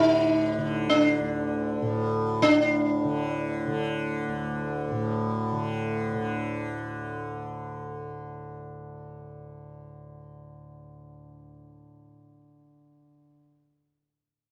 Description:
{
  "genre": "indian classical, Hindustani",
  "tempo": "free time",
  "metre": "none",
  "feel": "none",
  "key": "unclear",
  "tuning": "A4 = 440 Hz",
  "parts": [
    { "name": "sitar", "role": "melody", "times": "0.0-6.3 s", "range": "D4 to Eb4", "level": "-26 LUFS", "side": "equal", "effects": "none" },
    { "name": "tanpura", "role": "drone", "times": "0.0-13.3 s", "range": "D2 to D3", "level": "-32 LUFS", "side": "equal", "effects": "none" }
  ],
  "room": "light reverb",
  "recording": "dry, close 1970s-style studio recording",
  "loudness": "-27 LUFS",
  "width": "mono",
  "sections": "0.0-2.4 A section; 2.4-6.3 B section",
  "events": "none",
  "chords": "none"
}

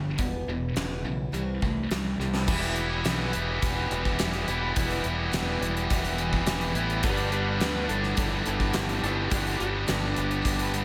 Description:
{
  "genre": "classic rock",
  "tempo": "105 BPM",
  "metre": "4/4",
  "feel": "straight",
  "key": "E minor",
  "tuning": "A4 = 441 Hz",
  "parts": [
    { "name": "picked steel-string acoustic guitar", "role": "accompaniment", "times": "0.0-10.8 s", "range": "E2 to G4", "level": "-38 LUFS", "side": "equal", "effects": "none" },
    { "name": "tight distorted guitar", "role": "riff", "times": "0.0-10.8 s", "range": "E2 to E4", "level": "-31 LUFS", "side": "equal", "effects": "distortion" },
    { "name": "growling fingered electric bass", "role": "bass", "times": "0.0-10.8 s", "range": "E1 to D2", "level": "-34 LUFS", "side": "equal", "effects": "overdrive" },
    { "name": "gated 80s drum kit", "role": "drums", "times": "0.2-10.8 s", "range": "crash cymbal, hi-hat, kick drum, snare drum", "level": "-32 LUFS", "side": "equal", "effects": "none" },
    { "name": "tonewheel organ", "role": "sustained chords", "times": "2.1-10.8 s", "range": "A3 to D5", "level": "-40 LUFS", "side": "equal", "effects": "overdrive, subtle chorus" },
    { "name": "electric slide guitar", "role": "second line", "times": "7.0-9.9 s", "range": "E4 to B4", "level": "-36 LUFS", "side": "equal", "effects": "tape echo" }
  ],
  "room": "light reverb, studio reverb",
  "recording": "none",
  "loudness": "-27 LUFS",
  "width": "mono",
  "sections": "0.0-2.5 A section; 2.5-10.8 B section",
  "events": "drum fill 2.2",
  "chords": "0.2 Em; 1.3 C; 2.5 Em; 7.0 G"
}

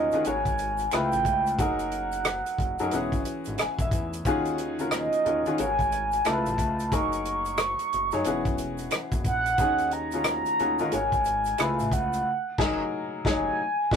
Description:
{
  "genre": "R&B, neo-soul",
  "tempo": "90 BPM",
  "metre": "4/4",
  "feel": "swing 62% on 16ths",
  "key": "unclear",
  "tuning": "A4 = 440 Hz",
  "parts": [
    { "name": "mellow horn-like synth lead", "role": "melody", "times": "0.0-14.0 s", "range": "Eb5 to Db6", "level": "-26 LUFS", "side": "right 2 dB", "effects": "chorus" },
    { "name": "clear upright piano", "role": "accompaniment", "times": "0.0-14.0 s", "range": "Db3 to G#5", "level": "-29 LUFS", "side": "left 3 dB", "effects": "none" },
    { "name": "fat analog bass", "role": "bass", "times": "0.0-14.0 s", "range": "E1 to Eb3", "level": "-36 LUFS", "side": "equal", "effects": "none" },
    { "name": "warm soul drum kit", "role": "drums", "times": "0.1-14.0 s", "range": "crash cymbal, hi-hat, kick drum, rim click, snare drum", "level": "-29 LUFS", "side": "equal", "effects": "none" },
    { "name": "tube shaker and finger snaps", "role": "percussion", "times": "0.1-12.2 s", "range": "none", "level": "-43 LUFS", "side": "right 3 dB", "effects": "none" }
  ],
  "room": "wet booth ambience, RT60 0.2 s",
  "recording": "rough rehearsal-room recording",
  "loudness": "-24 LUFS",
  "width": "side -7 dB against mid",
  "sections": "0.0-14.0 A section",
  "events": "upright piano fill 3.2-4.2; band accent 12.2-14.0",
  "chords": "0.2 Ab9sus4; 0.9 Db7alt; 1.6 Gb69; 2.9 E69; 4.2 Ebm11; 5.6 Ab9sus4; 6.2 Db7alt; 6.9 Gb69; 8.2 E69; 9.6 Ebm11; 10.9 Ab9sus4; 11.6 Db7alt; 12.2 Gb69"
}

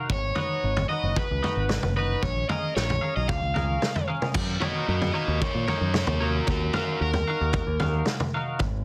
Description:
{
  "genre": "indie rock",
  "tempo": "113 BPM",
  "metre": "4/4",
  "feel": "straight",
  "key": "F# major",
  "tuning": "A4 = 437 Hz",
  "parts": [
    { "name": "twangy electric guitar", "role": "riff", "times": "0.0-8.6 s", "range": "A#3 to E#5", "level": "-34 LUFS", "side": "equal", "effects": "double-tracked" },
    { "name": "crunchy overdriven guitar", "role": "melody", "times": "0.1-8.0 s", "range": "F#4 to E#5", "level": "-32 LUFS", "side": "equal", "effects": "plate reverb, digital delay" },
    { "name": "picked electric bass", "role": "bass", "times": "0.1-8.8 s", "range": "F#1 to A#2", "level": "-30 LUFS", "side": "equal", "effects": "none" },
    { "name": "vintage drum kit", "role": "drums", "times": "0.1-8.7 s", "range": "crash cymbal, kick drum, snare drum, toms", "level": "-31 LUFS", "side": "equal", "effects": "none" }
  ],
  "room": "light reverb",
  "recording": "dense, heavily limited modern master",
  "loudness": "-26 LUFS",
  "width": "mono",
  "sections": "0.0-4.4 A section; 4.4-8.8 B section",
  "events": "overdriven electric guitar solo 4.4-8.8",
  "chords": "0.1 G#m7; 2.2 A#m7; 3.3 C#6; 4.4 F#6; 6.5 D#madd9"
}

